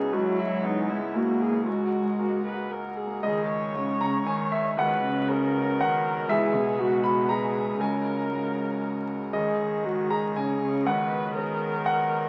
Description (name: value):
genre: neoclassical piano and strings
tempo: 118 BPM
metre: 3/4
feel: rubato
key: C# dorian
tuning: A4 = 440 Hz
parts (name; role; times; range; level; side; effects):
- bright grand piano; accompaniment; 0.0-12.3 s; C#2 to B5; -30 LUFS; equal; none
- muted viola; accompaniment; 0.0-12.3 s; D#4 to C#5; -32 LUFS; equal; none
- pedal harmonium; sustained chords; 0.0-12.3 s; F#3 to C#5; -39 LUFS; equal; none
- sub bass with octave; bass; 0.0-12.3 s; C#2; -52 LUFS; equal; none
- muted cello; second line; 0.1-12.3 s; B2 to A#3; -32 LUFS; equal; none
room: moderate studio ambience, RT60 0.5 s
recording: very old 78 rpm record, vinyl crackle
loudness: -26 LUFS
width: mono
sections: 0.0-3.2 A section; 3.2-12.3 B section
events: none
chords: 0.1 Eadd9/C#; 1.7 F#add9/C#; 3.2 C#sus2; 4.8 Badd9/C#; 6.3 Eadd9/C#; 7.8 F#add9/C#; 9.3 C#sus2; 10.9 Badd9/C#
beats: | 0.14 0.64 1.15 | 1.67 2.19 2.71 | 3.23 3.75 4.27 | 4.78 5.28 5.79 | 6.29 6.78 7.28 | 7.79 8.31 8.82 | 9.33 9.85 10.36 | 10.86 11.36 11.86